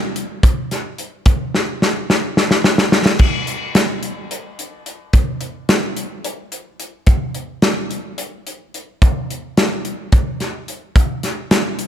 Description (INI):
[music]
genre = jazz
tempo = 217 BPM (eighths)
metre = 7/8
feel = straight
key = none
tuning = none
[part]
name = modern studio drum kit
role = drums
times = 0.2-11.9 s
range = crash cymbal, hi-hat, kick drum, snare drum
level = -15 LUFS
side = equal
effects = none
[sound]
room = light reverb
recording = none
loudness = -15 LUFS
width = side -10 dB against mid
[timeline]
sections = 0.0-3.2 A section; 3.2-11.9 B section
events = drum fill 1.5-3.2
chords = none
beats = 0.15 0.43 0.71 0.98 | 1.26 1.53 1.81 2.09 2.37 2.64 2.92 | 3.19 3.47 3.75 4.03 4.30 4.58 4.86 | 5.13 5.41 5.69 5.97 6.24 6.52 6.80 | 7.07 7.35 7.63 7.91 8.18 8.46 8.74 | 9.01 9.29 9.57 9.84 10.12 10.40 10.67 | 10.95 11.23 11.50 11.78